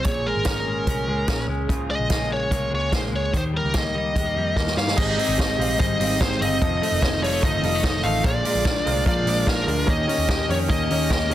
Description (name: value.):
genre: jangly indie pop.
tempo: 147 BPM.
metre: 4/4.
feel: straight.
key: Ab major.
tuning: A4 = 440 Hz.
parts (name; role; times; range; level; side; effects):
bluesy overdriven lead guitar; melody; 0.0-11.3 s; Bb4 to F5; -25 LUFS; equal; distortion.
electric guitar through a small old amp; accompaniment; 0.0-11.3 s; F2 to Ab4; -32 LUFS; right 4 dB; lush chorus, plate reverb.
direct-recorded clean electric guitar; arpeggios; 0.0-11.3 s; F2 to G4; -28 LUFS; left 5 dB; none.
vintage muted picked electric bass; bass; 0.0-11.3 s; F1 to G2; -27 LUFS; equal; none.
vintage drum kit; drums; 0.0-11.3 s; crash cymbal, hi-hat, kick drum, snare drum; -24 LUFS; equal; none.
bright upright piano; accompaniment; 5.0-11.3 s; Eb4 to F5; -31 LUFS; right 3 dB; plate reverb.
string machine, violins; sustained chords; 5.0-11.3 s; D3 to G4; -32 LUFS; equal; none.
room: light reverb.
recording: dense, heavily limited modern master.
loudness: -20 LUFS.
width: side -13 dB against mid.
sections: 0.0-5.0 A section; 5.0-11.3 B section.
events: drum fill 4.6-5.0.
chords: 0.1 Bbm7; 1.7 Db6; 3.3 Eb; 5.0 Abmaj7; 6.6 F7; 8.2 Bb7; 9.9 Eb7.